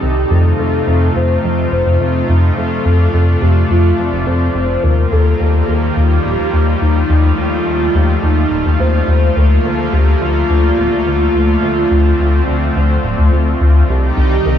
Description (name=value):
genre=synthwave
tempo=106 BPM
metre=4/4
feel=straight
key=unclear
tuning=A4 = 436 Hz
part: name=soft octave-layered synth lead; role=melody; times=0.0-14.6 s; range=Eb4 to C5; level=-19 LUFS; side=left 1 dB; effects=chorus, phaser, diffuse ambient delay
part: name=lush unison pad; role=sustained chords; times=0.0-14.6 s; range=C3 to A4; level=-17 LUFS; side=equal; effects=chorus
part: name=chorused synth bass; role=bass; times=0.0-14.6 s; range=D1 to F2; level=-13 LUFS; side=left 1 dB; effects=none
room=moderate lush hall reverb, RT60 2.7 s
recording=dreamy mix soaked in reverb, small room ambience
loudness=-11 LUFS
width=side -9 dB against mid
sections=0.0-13.9 A section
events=none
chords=0.3 F7; 4.8 Ebadd9; 9.4 Bbmaj7/D; 13.9 Cm